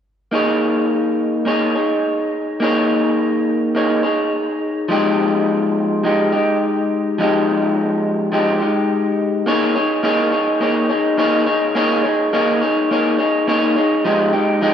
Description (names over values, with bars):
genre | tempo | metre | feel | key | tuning
indie pop | 105 BPM | 4/4 | swing 55% on 16ths | unclear | A4 = 440 Hz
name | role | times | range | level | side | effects
electric guitar through a small old amp | solo | 0.3-14.7 s | F3 to Db5 | -15 LUFS | left 1 dB | wide subtle chorus, vibrato effect, analog delay
room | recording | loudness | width
light reverb | rough home demo mix | -15 LUFS | side -8 dB against mid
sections
0.3-9.5 A section; 9.5-14.7 B section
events
none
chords
0.3 Bbm7; 4.9 Fm9; 9.5 Bbm7; 14.0 Fm9